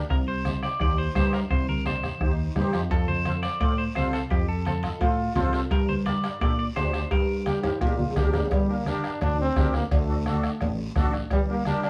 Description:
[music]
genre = latin, cumbia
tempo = 171 BPM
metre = 4/4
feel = straight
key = G minor, G harmonic minor from 8.5 s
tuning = A4 = 445 Hz
[part]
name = plucky analog bass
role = bass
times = 0.0-11.9 s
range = G1 to Bb2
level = -30 LUFS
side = equal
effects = none
[part]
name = clean electric guitar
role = melody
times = 0.1-7.6 s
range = G4 to D5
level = -33 LUFS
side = equal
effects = spring reverb, slapback echo, plate reverb
[part]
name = bombo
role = percussion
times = 0.1-11.9 s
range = none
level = -30 LUFS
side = equal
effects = none
[part]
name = guiro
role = percussion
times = 0.1-11.9 s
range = none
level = -48 LUFS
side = equal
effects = none
[part]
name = musette accordion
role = accompaniment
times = 0.5-11.9 s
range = D4 to Eb5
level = -35 LUFS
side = equal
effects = none
[part]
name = congas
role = percussion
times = 0.5-11.8 s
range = none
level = -34 LUFS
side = equal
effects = none
[part]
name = bright trombone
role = second line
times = 2.2-2.8, 5.0-11.9 s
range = G3 to G4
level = -31 LUFS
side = equal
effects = none
[part]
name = timbales and cowbell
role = percussion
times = 2.9-11.5 s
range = none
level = -38 LUFS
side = equal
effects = none
[sound]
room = moderate studio reverb, RT60 0.6 s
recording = small room ambience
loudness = -25 LUFS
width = mono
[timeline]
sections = 0.0-8.5 A section; 8.5-11.9 B section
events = drum fill 7.6-8.5; trombone solo 8.5-11.9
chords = 0.1 Cm; 2.9 F; 5.7 Gm; 9.9 D; 11.3 Gm

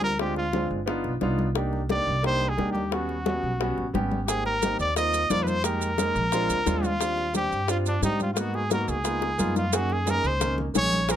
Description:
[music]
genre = Afro-Cuban jazz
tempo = 176 BPM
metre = 4/4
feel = straight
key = unclear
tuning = A4 = 438 Hz
[part]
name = clear trumpet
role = melody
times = 0.0-11.2 s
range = D4 to Eb5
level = -27 LUFS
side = equal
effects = none
[part]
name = warm grand piano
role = accompaniment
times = 0.0-11.2 s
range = G3 to Bb4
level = -29 LUFS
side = right 1 dB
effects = none
[part]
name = upright bass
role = bass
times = 0.0-11.2 s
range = G1 to Ab2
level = -30 LUFS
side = right 1 dB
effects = none
[part]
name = bongos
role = percussion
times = 0.0-11.2 s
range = none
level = -32 LUFS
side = left 11 dB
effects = none
[part]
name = congas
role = percussion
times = 0.0-11.2 s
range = none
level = -32 LUFS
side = left 1 dB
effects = none
[part]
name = maracas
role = percussion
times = 4.3-11.2 s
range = none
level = -33 LUFS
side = right 8 dB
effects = none
[sound]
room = little or no reverb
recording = close, detailed microphones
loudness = -23 LUFS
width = side -10 dB against mid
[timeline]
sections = 0.0-9.7 A section; 9.7-11.2 B section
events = drum fill 9.2-9.7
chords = 0.2 Dm7b5; 0.9 G7b13; 1.6 Cm9; 2.9 Eb7alt; 4.3 Abmaj9; 5.6 Fm11; 6.3 Bb9; 7.0 Ebmaj13; 8.4 Abm7; 9.1 Db13; 9.7 Gb6

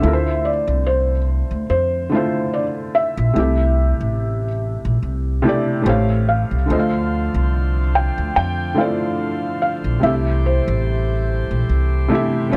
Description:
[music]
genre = lo-fi hip hop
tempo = 72 BPM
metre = 4/4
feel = swing 55% on 16ths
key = D minor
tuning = A4 = 439 Hz
[part]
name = felt-muted upright piano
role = melody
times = 0.0-11.7 s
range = C5 to G5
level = -25 LUFS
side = equal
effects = low-pass filter
[part]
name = felt-muted upright piano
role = accompaniment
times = 0.0-12.6 s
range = A2 to E#5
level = -24 LUFS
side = equal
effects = cassette tape, low-pass filter, plate reverb
[part]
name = upright bass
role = bass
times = 0.0-12.6 s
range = A1 to F2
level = -21 LUFS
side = equal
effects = none
[part]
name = pipe organ, principal chorus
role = sustained chords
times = 6.7-12.6 s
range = D3 to C5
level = -30 LUFS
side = equal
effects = low-pass filter
[sound]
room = light reverb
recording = none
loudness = -19 LUFS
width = mono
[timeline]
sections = 0.0-12.6 A section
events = none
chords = 0.0 Dm7; 3.4 Am7; 5.9 A7alt; 6.7 Dm7; 10.0 Am7

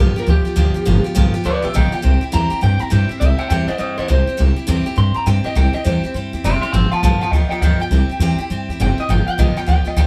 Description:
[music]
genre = rockabilly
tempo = 204 BPM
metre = 4/4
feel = swing 63% on 8ths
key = C major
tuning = A4 = 441 Hz
[part]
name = electric guitar through a small old amp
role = melody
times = 0.0-10.1 s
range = G4 to C6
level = -24 LUFS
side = equal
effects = none
[part]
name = picked steel-string acoustic guitar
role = accompaniment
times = 0.0-10.1 s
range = G2 to G4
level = -24 LUFS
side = equal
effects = none
[part]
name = upright bass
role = bass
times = 0.0-10.1 s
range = F1 to G2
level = -18 LUFS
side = equal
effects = none
[sound]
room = light reverb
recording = band playing live in one room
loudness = -17 LUFS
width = mono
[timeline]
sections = 0.0-3.2 A section; 3.2-10.1 A section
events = clean electric guitar solo 0.0-10.1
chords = 0.0 G7; 2.0 C; 6.7 G7; 7.9 C; 9.1 G7

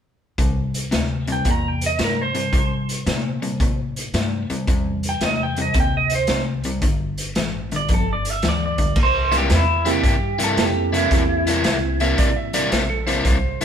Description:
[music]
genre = electric blues shuffle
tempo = 112 BPM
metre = 4/4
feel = swing 67% on 8ths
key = C mixolydian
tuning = A4 = 445 Hz
[part]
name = crunchy overdriven guitar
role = riff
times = 0.4-13.6 s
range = G2 to E4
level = -24 LUFS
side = left 3 dB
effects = none
[part]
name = upright bass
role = bass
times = 0.4-13.6 s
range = G1 to C3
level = -26 LUFS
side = equal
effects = none
[part]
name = raw garage drum kit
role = drums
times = 0.4-13.6 s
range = crash cymbal, hi-hat, kick drum, snare drum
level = -23 LUFS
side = equal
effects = none
[part]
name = electric guitar through a small old amp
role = melody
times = 1.3-12.0 s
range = E4 to Bb5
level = -23 LUFS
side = right 2 dB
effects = phaser
[part]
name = barky reed electric piano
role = accompaniment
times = 9.9-12.6 s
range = Bb3 to A4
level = -25 LUFS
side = right 6 dB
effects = overdrive
[part]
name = clean lap steel guitar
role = second line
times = 12.0-13.6 s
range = A4 to E5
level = -25 LUFS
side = right 4 dB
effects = none
[sound]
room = light reverb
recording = band playing live in one room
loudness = -18 LUFS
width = side -8 dB against mid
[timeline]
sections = 0.4-9.0 A section; 9.0-13.6 B section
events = none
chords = 0.4 C7; 6.8 G5; 9.0 C7

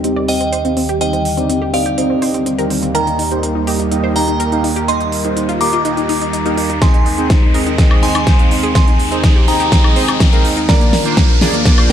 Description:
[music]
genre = progressive house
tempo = 124 BPM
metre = 4/4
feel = straight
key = Eb major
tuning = A4 = 440 Hz
[part]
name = warm analog pad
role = sustained chords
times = 0.0-11.9 s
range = Eb2 to Bb4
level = -21 LUFS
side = equal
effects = chorus, vintage 12-bit sampler grit, sidechain pumping
[part]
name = analog pluck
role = arpeggios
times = 0.0-11.9 s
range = Bb3 to Eb5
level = -22 LUFS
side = left 3 dB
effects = chorus, sidechain pumping, ping-pong delay
[part]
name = soft supersaw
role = stabs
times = 0.0-11.9 s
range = Bb3 to F5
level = -20 LUFS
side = right 3 dB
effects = sidechain pumping, low-pass filter, ping-pong delay
[part]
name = big-room dance drum kit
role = drums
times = 0.0-11.9 s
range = hi-hat, snare drum, woodblock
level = -20 LUFS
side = equal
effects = none
[part]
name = riser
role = sound effects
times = 1.6-11.9 s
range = none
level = -24 LUFS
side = equal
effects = none
[part]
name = glassy synth bell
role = melody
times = 0.3-11.9 s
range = D5 to D6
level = -20 LUFS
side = right 1 dB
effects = chorus, phaser, sidechain pumping, tape echo
[part]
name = electronic kick drum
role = drums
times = 6.8-11.8 s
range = none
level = -11 LUFS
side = equal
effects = none
[sound]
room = moderate concert hall reverb, RT60 1.9 s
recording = dark, warm production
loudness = -12 LUFS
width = side -9 dB against mid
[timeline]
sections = 0.0-11.9 A section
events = build-up 0.0-11.9; filter sweep on synth pluck 0.0-11.9; filter sweep on supersaw synth 0.0-11.9; riser 1.6-11.9; drum fill 6.8-11.9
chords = 0.0 Cm/Eb; 2.9 Eb; 6.8 Ab/Eb; 10.7 Bb/Eb

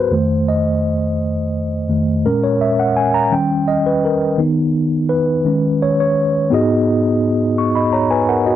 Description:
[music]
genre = gospel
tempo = 56 BPM (dotted quarters)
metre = 6/8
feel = straight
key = unclear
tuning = A4 = 440 Hz
[part]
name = mellow tine electric piano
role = solo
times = 0.0-8.6 s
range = F2 to C#6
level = -14 LUFS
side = equal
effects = medium stereo tremolo
[sound]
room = light reverb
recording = dry, close 1970s-style studio recording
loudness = -14 LUFS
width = side -11 dB against mid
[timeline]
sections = 0.0-6.5 A section; 6.5-8.6 B section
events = tine electric piano solo 0.0-6.5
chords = 0.1 F7; 2.3 A#m7b5; 3.3 D#7; 4.4 B/D#; 5.5 D#7sus4; 6.5 G#m7

